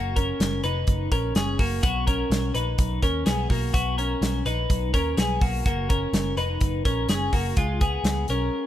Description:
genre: jangly indie pop.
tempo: 126 BPM.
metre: 4/4.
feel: straight.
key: F# major.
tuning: A4 = 440 Hz.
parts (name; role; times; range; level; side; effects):
twelve-string electric guitar; arpeggios; 0.0-8.7 s; G#3 to B4; -26 LUFS; left 2 dB; none.
vintage muted picked electric bass; bass; 0.0-8.5 s; E#1 to D#2; -27 LUFS; equal; none.
modern studio drum kit; drums; 0.2-8.4 s; hi-hat, kick drum, snare drum; -25 LUFS; equal; none.
room: light reverb.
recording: none.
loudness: -22 LUFS.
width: side -12 dB against mid.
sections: 0.0-8.7 A section.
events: none.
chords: 0.0 F#6; 1.8 B; 5.7 F#6; 7.6 C#.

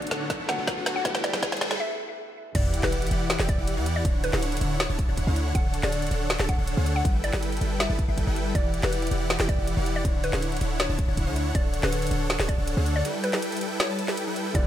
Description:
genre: future bass.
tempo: 160 BPM.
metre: 4/4.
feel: half-time.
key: D major.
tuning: A4 = 440 Hz.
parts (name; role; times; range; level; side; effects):
mallet-like synth pluck; melody; 0.0-14.7 s; B4 to F#5; -34 LUFS; left 1 dB; chorus, sidechain pumping, ping-pong delay.
clear grand piano; accompaniment; 0.0-2.6, 14.5-14.7 s; D3 to F#4; -37 LUFS; right 2 dB; sidechain pumping, ping-pong delay.
supersaw chords; riff; 0.0-14.7 s; D3 to A5; -29 LUFS; equal; sidechain pumping.
warm 808-style bass; bass; 0.0-14.7 s; D1 to E2; -28 LUFS; equal; sidechain pumping.
trap drum kit; drums; 0.0-14.6 s; crash cymbal, hi-hat, snare drum; -29 LUFS; equal; studio reverb.
riser and sub drop; sound effects; 0.0-4.0 s; none; -34 LUFS; equal; none.
electronic kick drum; drums; 0.3-14.6 s; none; -26 LUFS; equal; studio reverb.
room: little or no reverb.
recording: high-pass filter.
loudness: -23 LUFS.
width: side -11 dB against mid.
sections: 0.0-2.5 A section; 2.5-14.7 B section.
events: build-up 0.0-2.5; drum fill 0.0-1.8; riser 0.0-1.8; break 1.8-2.5, 13.0-14.5; drop 2.5-14.7; impact 2.5-4.0.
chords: 0.0 Bm7/D; 1.0 G69; 2.5 Em7; 4.0 Dmaj9; 5.5 Dmaj7; 7.0 G69; 8.5 Em7; 10.0 Dmaj9; 11.5 Dmaj7; 13.0 G69.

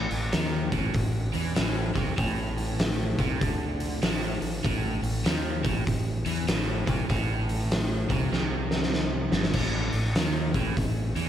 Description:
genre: blues rock power trio and southern rock.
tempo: 98 BPM.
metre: 4/4.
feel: swing 63% on 8ths.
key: unclear.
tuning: A4 = 441 Hz.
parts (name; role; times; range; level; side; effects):
crunchy overdriven guitar; riff; 0.0-11.3 s; G2 to E3; -30 LUFS; right 1 dB; slapback echo.
growling fingered electric bass; bass; 0.0-11.3 s; G1 to E2; -31 LUFS; equal; overdrive.
oversized low-tuned drum kit; drums; 0.1-11.3 s; crash cymbal, hi-hat, kick drum, snare drum; -28 LUFS; equal; none.
room: light reverb, small room ambience.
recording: none.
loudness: -24 LUFS.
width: side -10 dB against mid.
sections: 0.0-9.5 A section; 9.5-11.3 A section.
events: drum fill 8.3-9.5.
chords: 0.0 A5.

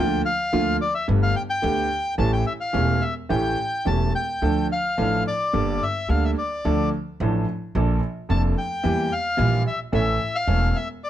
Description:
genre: tango.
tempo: 109 BPM.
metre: 4/4.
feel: rubato.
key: unclear.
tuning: A4 = 442 Hz.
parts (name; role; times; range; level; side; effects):
bandoneon; melody; 0.0-11.1 s; D5 to A5; -25 LUFS; left 2 dB; none.
warm grand piano; accompaniment; 0.0-10.7 s; E1 to A4; -24 LUFS; equal; none.
upright bass; bass; 0.0-10.7 s; E1 to E2; -24 LUFS; right 1 dB; none.
room: little or no reverb.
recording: close, detailed microphones.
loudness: -20 LUFS.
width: side -11 dB against mid.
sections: 0.0-11.1 A section.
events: none.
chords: 0.0 Bb/D; 1.1 Gadd9; 2.2 A7; 4.4 Dm; 5.5 Gmadd9; 6.7 Dm; 7.8 Bbmaj7; 8.8 Edim; 9.9 A.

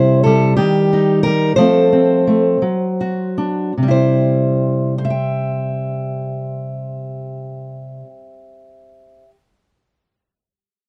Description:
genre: folk, solo fingerstyle acoustic guitar.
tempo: 49-62 BPM (dotted quarters).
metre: 6/8.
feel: rubato.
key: C major.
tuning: A4 = 442 Hz.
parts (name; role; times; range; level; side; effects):
fingerpicked steel-string acoustic guitar; solo; 0.0-9.3 s; C3 to G5; -17 LUFS; equal; none.
room: light reverb.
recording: dark, warm production.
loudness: -16 LUFS.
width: mono.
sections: 0.0-3.8 A section; 3.8-8.6 B section.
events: slowing down 0.0-3.8.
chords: 0.0 C; 0.6 Eb; 1.6 F; 2.6 D/F#; 3.8 C.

